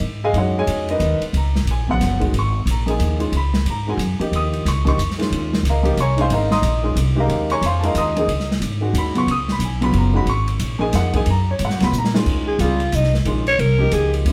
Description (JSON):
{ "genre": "modal jazz", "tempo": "181 BPM", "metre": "3/4", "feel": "swing 63% on 8ths", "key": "unclear", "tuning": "A4 = 439 Hz", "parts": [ { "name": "upright bass", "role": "bass", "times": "0.0-14.3 s", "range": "Gb1 to Bb2", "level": "-22 LUFS", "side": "equal", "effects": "none" }, { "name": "open jazz drum kit", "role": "drums", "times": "0.0-14.3 s", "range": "crash cymbal, hi-hat, kick drum, ride cymbal, snare drum", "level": "-29 LUFS", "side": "equal", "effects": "none" }, { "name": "warm upright piano", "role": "accompaniment", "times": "0.2-14.3 s", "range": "Db3 to Eb6", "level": "-24 LUFS", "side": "equal", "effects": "none" }, { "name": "growling alto saxophone", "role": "melody", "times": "12.5-14.1 s", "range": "Eb4 to Db5", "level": "-22 LUFS", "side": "equal", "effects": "none" } ], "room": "moderate studio reverb, RT60 0.9 s", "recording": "heard from further back in the room", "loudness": "-19 LUFS", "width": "mono", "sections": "0.0-12.3 A section; 12.3-14.3 A section", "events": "drum fill 11.9-12.3; alto saxophone solo 12.3-14.3", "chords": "0.3 Db13sus4; 4.3 Eb13sus4; 8.3 Db13sus4; 12.3 Eb13sus4", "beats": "0.00 | 0.34 0.67 1.00 | 1.33 1.67 2.00 | 2.33 2.66 2.99 | 3.32 3.65 3.99 | 4.32 4.65 4.98 | 5.31 5.64 5.97 | 6.30 6.63 6.96 | 7.29 7.62 7.95 | 8.28 8.61 8.95 | 9.28 9.61 9.94 | 10.27 10.60 10.93 | 11.26 11.59 11.92 | 12.26 12.59 12.92 | 13.25 13.58 13.92 | 14.25" }